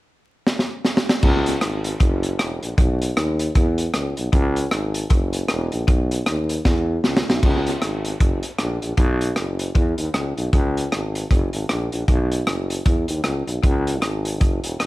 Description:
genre	ska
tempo	155 BPM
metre	4/4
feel	swing 60% on 8ths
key	C# minor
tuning	A4 = 442 Hz
part	crunchy breakbeat drum kit	drums	0.5-14.9 s	crash cymbal, hi-hat, kick drum, rim click, snare drum	-20 LUFS	equal	tape echo
part	clear tuba	bass	1.2-14.9 s	E1 to E2	-22 LUFS	equal	none
room	light reverb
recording	vinyl crackle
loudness	-18 LUFS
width	side -18 dB against mid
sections	0.0-1.2 A section; 1.2-7.4 B section; 7.4-14.9 C section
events	drum fill 0.5-1.2, 6.7-7.4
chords	none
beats	0.07 0.46 0.84 | 1.23 1.62 2.00 2.39 | 2.78 3.17 3.55 3.94 | 4.33 4.71 5.10 5.49 | 5.88 6.26 6.65 7.04 | 7.43 7.81 8.20 8.59 | 8.98 9.37 9.75 10.14 | 10.53 10.92 11.31 11.69 | 12.08 12.47 12.86 13.25 | 13.63 14.02 14.41 14.80

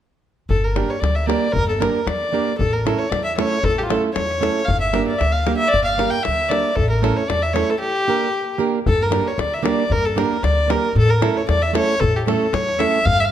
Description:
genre	balkan folk, Balkan wedding band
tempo	115 BPM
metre	2/4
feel	swing 56% on 16ths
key	G dorian sharp4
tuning	A4 = 440 Hz
part	dark fiddle	melody	0.5-13.3 s	F4 to G5	-20 LUFS	left 1 dB	none
part	upright bass	bass	0.5-13.3 s	G1 to A2	-22 LUFS	left 1 dB	none
part	davul	percussion	0.5-13.2 s	none	-25 LUFS	left 4 dB	none
part	nylon-string guitar	accompaniment	0.8-13.0 s	A3 to Bb4	-23 LUFS	right 6 dB	none
room	moderate recital hall reverb, RT60 1.7 s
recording	close, detailed microphones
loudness	-17 LUFS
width	side -10 dB against mid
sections	0.5-8.9 A section; 8.9-13.3 A section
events	none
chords	0.5 Gm; 2.6 A; 4.7 Gm; 6.8 A; 7.8 Gm; 11.0 A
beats	| 0.51 1.03 | 1.55 2.07 | 2.60 3.12 | 3.64 4.16 | 4.69 5.21 | 5.73 6.25 | 6.78 7.30 | 7.82 8.34 | 8.87 9.39 | 9.91 10.44 | 10.96 11.48 | 12.01 12.53 | 13.05

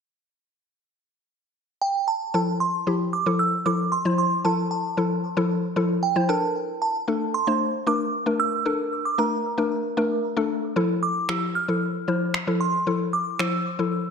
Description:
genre	dance-pop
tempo	114 BPM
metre	4/4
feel	straight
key	F major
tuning	A4 = 444 Hz
part	glassy synth bell	melody	1.8-14.1 s	G5 to F6	-26 LUFS	right 4 dB	chorus, ping-pong delay
part	mallet-like synth pluck	accompaniment	2.3-14.1 s	F3 to C5	-24 LUFS	left 2 dB	chorus
part	electronic finger snaps	drums	11.3-13.5 s	none	-30 LUFS	equal	none
room	wet plate reverb, RT60 1.4 s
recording	dreamy mix soaked in reverb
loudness	-22 LUFS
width	side -6 dB against mid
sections	0.2-2.3 A section; 2.3-14.1 B section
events	none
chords	0.2 N.C.; 2.3 Fmaj7; 6.3 Bbmaj7; 10.8 Fmaj7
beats	| 0.24 0.76 1.29 1.82 | 2.34 2.87 3.40 3.92 | 4.45 4.97 5.50 6.03 | 6.55 7.08 7.61 8.13 | 8.66 9.18 9.71 10.24 | 10.76 11.29 11.82 12.34 | 12.87 13.39 13.92

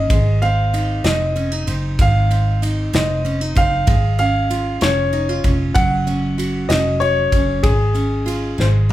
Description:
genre	six-eight pop ballad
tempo	64 BPM (dotted quarters)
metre	6/8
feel	straight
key	Db major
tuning	A4 = 440 Hz
part	clear grand piano	melody	0.0-8.9 s	Ab4 to Gb5	-20 LUFS	left 1 dB	none
part	picked steel-string acoustic guitar	accompaniment	0.0-8.9 s	Eb3 to Gb4	-24 LUFS	right 2 dB	none
part	vintage muted fingered electric bass	bass	0.0-8.9 s	F1 to Ab1	-19 LUFS	equal	none
part	modern studio drum kit	drums	0.1-8.9 s	kick drum, ride cymbal, snare drum, toms	-21 LUFS	equal	none
room	light reverb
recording	band playing live in one room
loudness	-15 LUFS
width	side -14 dB against mid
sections	0.0-8.9 A section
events	drum fill 8.6-8.9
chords	0.1 Ab; 3.9 Db/Ab; 5.8 Gb5; 7.6 Db/Ab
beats	| 0.10 1.05 | 1.99 2.94 | 3.88 4.82 | 5.76 6.70 | 7.64 8.59

